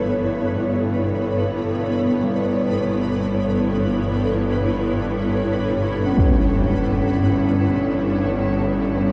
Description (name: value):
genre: dark ambient drone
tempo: free time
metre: none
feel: none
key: unclear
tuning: A4 = 441 Hz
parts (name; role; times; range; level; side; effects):
- granular cloud pad; sustained chords; 0.0-9.1 s; G2 to C#5; -24 LUFS; equal; built-in reverb
- bowed-like drone; drone; 0.0-9.1 s; G1 to G2; -27 LUFS; equal; built-in reverb
- flickering grainy texture; texture; 0.0-9.1 s; B4; -35 LUFS; equal; built-in reverb
- bronze singing bowl; arpeggios; 2.2-9.1 s; G3 to C#4; -27 LUFS; equal; diffuse ambient delay
- impact; percussion; 6.2-6.4 s; none; -25 LUFS; equal; low-pass filter on sfx
room: wet cathedral reverb, RT60 5.5 s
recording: in a vast, echoing space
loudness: -20 LUFS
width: mono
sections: 0.0-9.1 A section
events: none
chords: 0.0 Gsus2